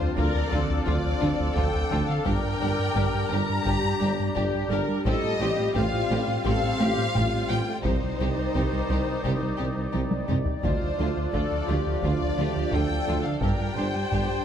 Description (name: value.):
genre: cinematic, hybrid orchestral and electronic film score.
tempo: 86 BPM.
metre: 4/4.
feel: straight.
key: unclear.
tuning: A4 = 440 Hz.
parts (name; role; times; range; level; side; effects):
warm studio violin section; melody; 0.0-14.4 s; C5 to Bb5; -32 LUFS; left 4 dB; none.
rich symphonic viola section; accompaniment; 0.0-14.4 s; Eb4 to C5; -33 LUFS; equal; none.
mellow French horn section; sustained chords; 0.0-14.4 s; Eb3 to D5; -35 LUFS; left 3 dB; none.
phased analog pad; sustained chords; 0.0-14.4 s; G3 to D5; -32 LUFS; equal; phaser, chorus.
smooth synth bass; riff; 0.0-14.4 s; C2 to A3; -29 LUFS; right 1 dB; none.
sub drop; sound effects; 0.0-2.3 s; none; -35 LUFS; left 1 dB; none.
warm symphonic violin section; second line; 0.2-14.2 s; C4 to G4; -37 LUFS; left 4 dB; none.
dark symphonic cello section; bass; 0.2-14.2 s; G2 to D3; -34 LUFS; right 2 dB; none.
mellow tuba; bass; 0.2-14.3 s; G1 to D2; -34 LUFS; right 4 dB; none.
rich studio double bass section; bass; 0.2-14.2 s; G1 to D2; -34 LUFS; right 2 dB; none.
taiko ensemble; drums; 0.2-14.4 s; none; -33 LUFS; equal; none.
room: moderate concert hall reverb, RT60 1.9 s.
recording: close, detailed microphones.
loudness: -23 LUFS.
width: side -9 dB against mid.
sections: 0.0-14.4 A section.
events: impact 0.0-2.3; drum fill 9.9-10.6.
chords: 0.0 Dm7; 2.3 Gm; 5.1 Fadd9/A; 7.8 Cmadd9; 10.6 Dm7; 13.4 Gm.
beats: 0.17 0.87 1.56 | 2.26 2.96 3.66 4.36 | 5.05 5.75 6.45 7.15 | 7.84 8.54 9.24 9.94 | 10.63 11.33 12.03 12.73 | 13.43 14.12.